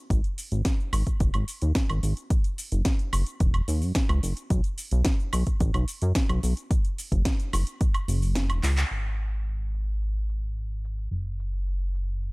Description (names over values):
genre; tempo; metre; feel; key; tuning
nu-disco, nu disco; 109 BPM; 4/4; straight; unclear; A4 = 439 Hz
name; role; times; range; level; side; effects
chorused synth bass; bass; 0.1-12.3 s; E1 to F#2; -25 LUFS; equal; none
electronic kick drum; drums; 0.1-7.9 s; none; -24 LUFS; equal; none
house drum kit; drums; 0.1-12.3 s; crash cymbal, handclaps, hi-hat, shaker, snare drum, woodblock; -32 LUFS; right 1 dB; low-pass filter on hats, low-pass filter on perc, low-pass filter on snare, low-pass filter on cymbals
room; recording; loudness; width
little or no reverb; none; -24 LUFS; side -26 dB against mid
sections
0.0-8.9 A section; 8.9-12.3 B section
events
kick drops out 8.4-8.9; drum fill 8.6; band accent 8.8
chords
none